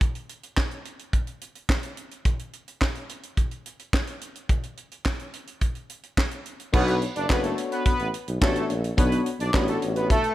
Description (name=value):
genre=early-eighties boogie funk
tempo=107 BPM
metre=4/4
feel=straight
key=B minor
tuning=A4 = 440 Hz
part: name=tight funk drum kit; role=drums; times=0.0-10.3 s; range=crash cymbal, handclaps, hi-hat, kick drum, snare drum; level=-25 LUFS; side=equal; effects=none
part: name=analog synth brass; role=second line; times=6.7-10.3 s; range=A3 to D5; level=-27 LUFS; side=right 1 dB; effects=chorus
part: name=FM electric piano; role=accompaniment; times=6.7-10.2 s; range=B3 to C#5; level=-28 LUFS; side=left 4 dB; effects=chorus
part: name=warm tuba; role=bass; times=6.7-10.1 s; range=F#1 to B1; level=-27 LUFS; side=equal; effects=none
room=little or no reverb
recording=none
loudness=-23 LUFS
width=side -15 dB against mid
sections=0.0-6.7 A section; 6.7-10.3 B section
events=none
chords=0.0 N.C.; 6.7 Bm9